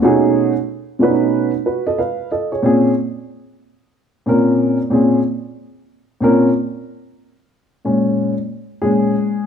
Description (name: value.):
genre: hip hop.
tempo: 92 BPM.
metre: 4/4.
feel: swing 64% on 16ths.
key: unclear.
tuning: A4 = 439 Hz.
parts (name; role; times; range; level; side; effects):
dark baby grand piano; solo; 0.0-9.5 s; Bb2 to F5; -14 LUFS; equal; none.
room: moderate large studio reverb, RT60 1.2 s.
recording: band playing live in one room.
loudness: -14 LUFS.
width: side -8 dB against mid.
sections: 0.0-7.9 A section; 7.9-9.5 B section.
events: grand piano solo 7.9-9.5.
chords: 0.0 B13; 2.6 Bbmadd9; 7.9 Bbm7.